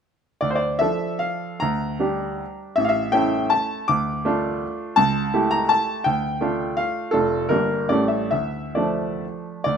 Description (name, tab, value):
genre	classical, romantic triple-time dance for piano with dotted rhythms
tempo	127-176 BPM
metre	3/4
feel	rubato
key	D minor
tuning	A4 = 439 Hz
part	bright baby grand piano	solo	0.4-9.8 s	F1 to D6	-20 LUFS	equal	none
room	light reverb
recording	minimal, uncompressed stereo recording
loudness	-20 LUFS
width	side -7 dB against mid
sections	0.4-9.7 A section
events	none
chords	0.4 Dm; 1.6 Gm/D; 2.8 A7; 3.9 Dm; 5.0 A7/C#; 6.1 Dm; 7.1 Dm/F; 7.5 Gm; 7.9 A7; 8.3 Dm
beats	| 0.43 0.81 1.21 | 1.62 2.00 2.40 | 2.77 3.13 3.50 | 3.89 4.25 4.62 | 4.97 5.34 5.70 | 6.05 6.41 6.78 | 7.13 7.50 7.91 | 8.32 8.77 9.23 | 9.66